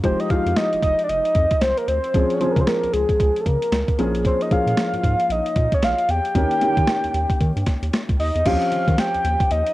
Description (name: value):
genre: R&B, new jack swing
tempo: 114 BPM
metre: 4/4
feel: swing 61% on 16ths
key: unclear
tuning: A4 = 443 Hz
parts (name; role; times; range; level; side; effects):
- soft octave-layered synth lead; melody; 0.0-9.7 s; Ab4 to G5; -21 LUFS; equal; chorus, cassette tape
- dark baby grand piano; accompaniment; 0.0-9.7 s; Eb3 to Ab4; -25 LUFS; left 1 dB; cassette tape
- round analog bass; bass; 0.0-9.6 s; F1 to Eb3; -24 LUFS; equal; none
- boom bap sampler-style drum kit; drums; 0.0-9.7 s; crash cymbal, hi-hat, kick drum, snare drum; -22 LUFS; equal; cassette tape
room: moderate spring reverb, RT60 1.4 s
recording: home recording on cassette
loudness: -17 LUFS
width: side -17 dB against mid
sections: 0.0-8.5 A section; 8.5-9.7 B section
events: none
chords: 0.0 Fm9; 2.1 Dbmaj7; 4.0 Bbm7; 6.4 Eb7; 8.5 Eb13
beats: | 0.04 0.56 1.09 1.61 | 2.14 2.67 3.19 3.72 | 4.25 4.77 5.30 5.83 | 6.35 6.88 7.41 7.93 | 8.46 8.98 9.51